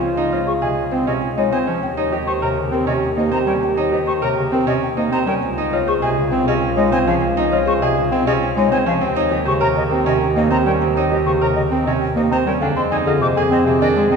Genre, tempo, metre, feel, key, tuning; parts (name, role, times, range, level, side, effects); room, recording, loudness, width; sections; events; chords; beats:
classical, minimalist pattern music; 100 BPM; 3/4; straight; A4 = 435 Hz
buzzing marimba with soft mallets; melody; 0.0-14.2 s; G4 to Ab5; -23 LUFS; left 8 dB
clear French horn; second line; 0.0-14.2 s; F4 to Ab4; -23 LUFS; right 1 dB
bright baby grand piano; arpeggios; 0.0-14.2 s; C4 to C5; -22 LUFS; right 5 dB
rich double bass; bass; 0.0-14.2 s; Db2 to F2; -25 LUFS; right 3 dB
concert flute; arpeggios; 0.3-14.2 s; Eb5 to D6; -25 LUFS; left 2 dB
mellow bass clarinet; accompaniment; 0.6-14.2 s; C3 to C4; -22 LUFS; equal
wet cathedral reverb, RT60 4.7 s; recorded in a church or concert hall; -16 LUFS; side -5 dB against mid
0.0-12.6 A section; 12.6-14.2 B section
0.0 Dbmaj7; 1.8 Eb7; 5.4 Dbmaj7; 9.0 Eb7; 12.6 Fm7
| 0.02 0.62 1.22 | 1.82 2.42 3.02 | 3.62 4.22 4.82 | 5.42 6.02 6.62 | 7.22 7.82 8.42 | 9.02 9.62 10.22 | 10.82 11.42 12.02 | 12.62 13.22 13.82